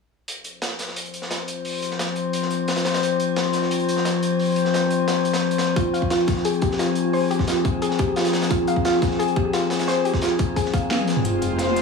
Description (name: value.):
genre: dark technical drum and bass.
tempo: 175 BPM.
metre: 4/4.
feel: straight.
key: F minor.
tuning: A4 = 440 Hz.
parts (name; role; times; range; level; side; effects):
metallic inharmonic drone; sustained chords; 1.1-11.8 s; C3 to C5; -22 LUFS; left 5 dB; chorus, built-in reverb, sidechain pumping.
crunchy breakbeat drum kit; drums; 0.3-11.8 s; hi-hat, snare drum; -28 LUFS; equal; high-pass filter on hats, small room reverb, high-pass filter on snare, high-pass filter on room.
soft round pluck; arpeggios; 5.8-11.8 s; F4 to F5; -23 LUFS; right 1 dB; chorus, sidechain pumping, digital delay.
electronic kick drum; drums; 5.8-10.8 s; none; -24 LUFS; equal; small room reverb.
drum and bass drum kit; drums; 10.9-11.8 s; hi-hat, snare drum, toms; -23 LUFS; equal; small room reverb.
phased detuned saw bass; bass; 11.2-11.8 s; F1; -28 LUFS; left 1 dB; phaser, tube saturation, sidechain pumping.
riser; sound effects; 11.4-11.8 s; none; -28 LUFS; right 5 dB; none.
warm studio string section; texture; 11.2-11.8 s; F4 to C5; -24 LUFS; left 1 dB; sidechain pumping.
room: moderate plate reverb, RT60 1.1 s, small room ambience.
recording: studio ambience.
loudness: -20 LUFS.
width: side -4 dB against mid.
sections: 0.3-11.2 A section.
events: filter sweep on synth drone 0.3-11.2; drum fill 10.9-11.2; riser 11.4-11.8.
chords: 0.3 F5.